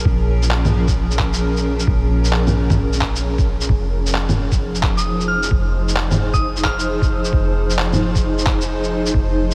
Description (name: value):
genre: future garage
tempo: 132 BPM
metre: 4/4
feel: swing 64% on 16ths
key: F minor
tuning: A4 = 441 Hz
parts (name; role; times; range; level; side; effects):
- granular cloud pad; sustained chords; 0.0-9.5 s; F3 to C5; -25 LUFS; equal; built-in reverb, sidechain pumping
- soft 808-style bass; bass; 0.0-9.5 s; F1 to Bb1; -23 LUFS; equal; sidechain pumping
- electronic kick drum; drums; 0.1-9.3 s; none; -22 LUFS; equal; none
- electronic shaker, handclaps and bongos; drums; 0.4-9.5 s; none; -25 LUFS; equal; none
- soft synth bell; melody; 5.0-7.3 s; Eb6 to F6; -28 LUFS; equal; chorus, phaser, tape echo
room: moderate huge ambient reverb, RT60 6.2 s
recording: dreamy mix soaked in reverb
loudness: -18 LUFS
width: mono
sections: 0.0-3.7 A section; 3.7-9.5 A section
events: none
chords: 0.0 Bbm7; 3.7 Fm7